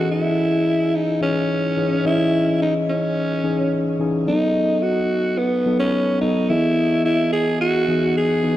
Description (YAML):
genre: pop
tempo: 108 BPM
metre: 4/4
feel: straight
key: unclear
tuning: A4 = 440 Hz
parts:
  - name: breathy alto saxophone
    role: melody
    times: 0.0-8.6 s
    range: B3 to G#4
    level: -19 LUFS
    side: right 1 dB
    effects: slapback echo, shimmer reverb
  - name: mellow tine electric piano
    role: accompaniment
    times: 0.0-8.6 s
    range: E3 to D#5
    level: -21 LUFS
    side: left 2 dB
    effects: shimmer reverb
room: wet spring reverb, RT60 2.9 s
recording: dark, warm production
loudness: -17 LUFS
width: side -13 dB against mid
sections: 0.0-8.6 A section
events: none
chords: 0.0 C#madd9; 4.3 B7; 6.5 Emaj7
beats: 0.39 0.94 1.50 | 2.05 2.61 3.16 3.72 | 4.27 4.83 5.38 5.94 | 6.50 7.05 7.61 8.16